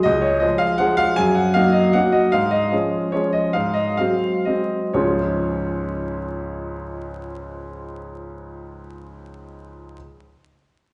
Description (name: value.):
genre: classical, piano waltz.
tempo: 118-165 BPM.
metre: 3/4.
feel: rubato.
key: Db major.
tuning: A4 = 440 Hz.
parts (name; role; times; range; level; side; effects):
bright grand piano; solo; 0.0-10.0 s; Db2 to Ab5; -22 LUFS; equal; none.
room: wet recital hall reverb, RT60 1.5 s.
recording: heard from further back in the room, vinyl crackle, nothing above 10.6 kHz.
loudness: -20 LUFS.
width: mono.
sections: 0.0-5.0 A section; 5.0-7.8 B section.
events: slowing down 1.7-5.0.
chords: 0.1 Db; 1.2 Ebm/Gb; 2.3 Db/Ab; 3.5 Ab7; 5.0 Db.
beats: | 0.05 0.42 0.81 | 1.18 1.55 1.95 | 2.33 2.72 3.13 | 3.55 3.98 4.46 | 4.95 5.43 5.91 | 6.38 6.84 7.33.